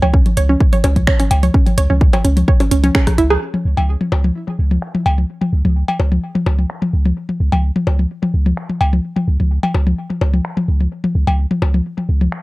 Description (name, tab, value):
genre	minimal techno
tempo	128 BPM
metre	4/4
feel	straight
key	unclear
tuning	A4 = 440 Hz
part	hollow square pluck	riff	0.0-3.4 s	C#4 to C#5	-20 LUFS	right 3 dB	chorus, sidechain pumping, tape echo
part	punchy sub bass	bass	0.0-12.3 s	C#2	-14 LUFS	equal	sidechain pumping
part	electronic toms, cowbell and bongos	percussion	0.0-12.3 s	none	-20 LUFS	left 2 dB	analog delay
part	electronic kick drum	drums	0.1-3.2 s	none	-13 LUFS	equal	none
part	techno drum kit	drums	0.3-12.4 s	finger snaps, hi-hat, rim click	-23 LUFS	right 1 dB	low-pass filter on hats, low-pass filter on snare, low-pass filter on room
room	little or no reverb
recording	dry, gritty hardware recording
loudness	-14 LUFS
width	side -20 dB against mid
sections	0.0-3.4 A section; 3.4-12.4 B section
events	drum fill 2.9-3.4; band accent 3.3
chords	0.0 N.C.; 3.4 C#5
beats	0.14 0.60 1.07 | 1.54 2.01 2.48 2.95 | 3.42 3.89 4.35 4.82 | 5.29 5.76 6.23 6.70 | 7.17 7.64 8.10 8.57 | 9.04 9.51 9.98 10.45 | 10.92 11.39 11.85 12.32